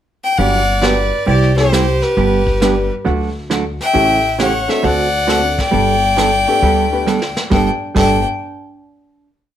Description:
country, western swing; 135 BPM; 4/4; swing 67% on 8ths; G major; A4 = 436 Hz
clear fiddle; melody; 0.2-8.2 s; B4 to G5; -17 LUFS; left 3 dB
clear fiddle; second line; 0.4-8.2 s; D4 to E5; -22 LUFS; right 4 dB
vintage hollow-body jazz guitar; accompaniment; 0.4-8.2 s; C3 to A4; -18 LUFS; right 5 dB
upright bass; bass; 0.4-8.2 s; G1 to D2; -19 LUFS; left 1 dB
vintage brush drum kit; drums; 0.4-8.1 s; brushed snare drum, crash cymbal, hi-hat, kick drum, snare drum; -23 LUFS; equal
clear upright piano; accompaniment; 0.8-8.2 s; G3 to B4; -22 LUFS; left 3 dB
moderate studio reverb, RT60 0.7 s; -12 LUFS; side -10 dB against mid
0.0-0.4 pickup bar; 0.4-7.5 A section; 7.5-9.3 final chord
drum fill 7.1-7.5
0.4 Gmaj7; 1.3 C; 2.2 G; 3.1 D; 4.0 A7; 4.8 D7; 5.7 Gadd9
| 0.39 0.83 1.28 1.73 | 2.17 2.62 3.07 3.51 | 3.96 4.40 4.85 5.29 | 5.74 6.18 6.62 7.07 | 7.51 7.95

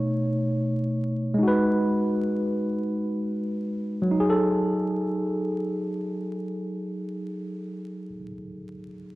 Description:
hip hop; free time; F# dorian; A4 = 440 Hz
tine electric piano; accompaniment; 0.0-9.2 s; B2 to C#5; -24 LUFS; equal; medium stereo tremolo, cassette tape
moderate plate reverb, RT60 2.4 s; vinyl crackle; -24 LUFS; side -18 dB against mid
0.0-4.2 A section; 4.2-6.9 B section
0.0 B9; 1.4 G#m7; 4.2 F#m69
free time

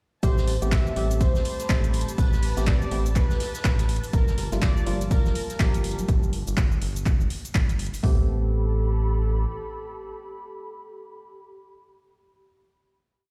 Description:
deep house; 123 BPM; 4/4; swing 60% on 16ths; A minor; A4 = 436 Hz
warm velvety synth lead; melody; 0.2-11.4 s; A4 to E5; -37 LUFS; equal; chorus, tape echo
percussive organ stab; stabs; 0.2-11.4 s; F3 to A4; -36 LUFS; equal; chorus, sidechain pumping, tape echo
round analog bass; bass; 0.2-9.5 s; G1 to A1; -28 LUFS; equal; sidechain pumping
deep house drum kit; drums; 0.2-8.0 s; cabasa, handclaps, hi-hat; -36 LUFS; equal
punchy analog drum machine; drums; 0.2-8.2 s; hi-hat, kick drum, toms; -25 LUFS; equal; overdrive
vintage brush drum kit; drums; 0.2-6.0 s; hi-hat, snare drum, tambourine; -44 LUFS; equal; sidechain pumping on hats, high-pass filter on hats, high-pass filter on snare, sidechain pumping on perc, high-pass filter on perc, high-pass filter on room
airy breathy pad; texture; 1.4-11.6 s; F4 to B5; -44 LUFS; equal; chorus, sidechain pumping
muted studio violin section; texture; 0.2-6.1 s; A5; -49 LUFS; equal; sidechain pumping
congas; percussion; 4.4-6.1 s; -37 LUFS; equal
small room ambience; played on a big sound system in a bare room, large studio reverb; -24 LUFS; mono
0.2-8.0 drop; 8.0-11.9 final chord
drop 0.2-8.0
0.2 Am9; 4.1 Gm9; 8.0 Am9
| 0.23 0.72 1.21 1.70 | 2.18 2.67 3.16 3.65 | 4.13 4.62 5.11 5.60 | 6.08 6.57 7.06 7.55 | 8.04 8.52 9.01 9.50 | 9.99 10.47 10.96 11.45

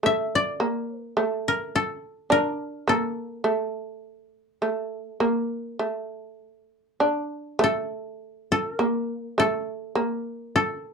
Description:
japanese traditional, Japanese chamber music; 52 BPM; 4/4; rubato; A4 = 441 Hz
koto; melody; 0.0-10.9 s; A4 to E5; -24 LUFS; left 3 dB
shamisen; second line; 0.0-10.9 s; A3 to D4; -25 LUFS; right 1 dB
moderate small room reverb, RT60 0.5 s; dark, warm production; -24 LUFS; side -5 dB against mid
0.0-7.6 A section; 7.6-10.9 B section
0.60 1.74 | 2.88 4.02 5.20 6.41 | 7.61 8.79 9.96

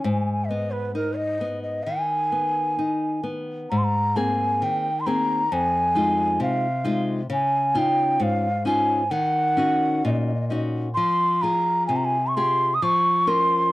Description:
fado-style ballad; 66 BPM; 2/4; rubato; G# minor, Ab major from 3.7 s; A4 = 440 Hz
breathy mellow bansuri; melody; 0.0-13.7 s; A#4 to Eb6; -22 LUFS; equal; slapback echo
nylon-string guitar; accompaniment; 0.0-13.7 s; F2 to Bb4; -25 LUFS; left 2 dB
light reverb; dry, close 1970s-style studio recording; -20 LUFS; side -18 dB against mid
0.0-3.7 A section; 3.7-13.7 B section
0.0 G#m; 3.7 Abadd9; 5.5 Fm7; 7.3 Dbadd9; 9.1 Ebm7; 11.0 Fmadd9; 12.8 Bbm/F
| 0.04 0.94 | 1.84 2.76 | 3.69 4.61 | 5.51 6.39 | 7.29 8.19 | 9.11 10.03 | 10.97 11.89 | 12.81

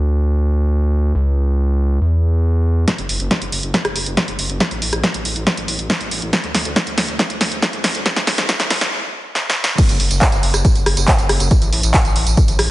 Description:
uplifting trance; 139 BPM; 4/4; straight; F# minor; A4 = 440 Hz
gritty driven synth bass; bass; 0.0-12.7 s; F#1 to E2; -18 LUFS; equal; sidechain pumping
electronic kick drum; drums; 2.9-12.5 s; -17 LUFS; equal; high-pass filter on kick, high-pass filter on room
punchy analog drum machine; drums; 2.9-12.7 s; crash cymbal, handclaps, hi-hat, rim click, snare drum, tambourine; -17 LUFS; equal
light reverb; high-pass filter, nothing above 11.0 kHz; -15 LUFS; side -17 dB against mid
0.0-2.9 A section; 2.9-9.8 B section; 9.8-12.7 C section
build-up 2.9-9.8; drum fill 2.9-8.9, 9.4-9.8; filter sweep 2.9-9.8; stop 8.9-9.8; drop 9.8-12.7
0.29 0.72 | 1.15 1.58 2.01 2.44 | 2.88 3.31 3.74 4.17 | 4.60 5.04 5.47 5.90 | 6.33 6.76 7.19 7.62 | 8.06 8.49 8.92 9.35 | 9.78 10.21 10.65 11.08 | 11.51 11.94 12.37

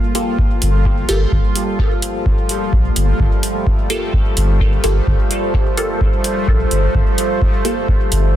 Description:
dub techno; 128 BPM; 4/4; straight; G minor; A4 = 440 Hz
deep dark ambient pad; sustained chords; 0.0-8.4 s; G3 to C5; -22 LUFS; equal; chorus, built-in reverb, sidechain pumping
filtered dub chord stab; stabs; 0.0-7.8 s; Bb3 to A4; -24 LUFS; equal; phaser, sidechain pumping, dub echo
bubbling stepped-filter texture; texture; 0.0-8.4 s; F3 to F4; -27 LUFS; equal; chorus, built-in reverb, sidechain pumping
electronic hi-hat; drums; 0.1-8.2 s; -22 LUFS; right 2 dB
electronic kick drum; drums; 0.4-8.0 s; -17 LUFS; equal
soft dub sub bass; bass; 0.6-8.4 s; G1 to Bb1; -16 LUFS; equal; sidechain pumping
little or no reverb; dense, heavily limited modern master; -14 LUFS; side -12 dB against mid
0.0-8.4 A section
0.0 Gm9
0.39 0.85 | 1.32 1.79 2.26 2.73 | 3.20 3.67 4.13 4.60 | 5.07 5.54 6.01 6.48 | 6.95 7.42 7.88 8.35

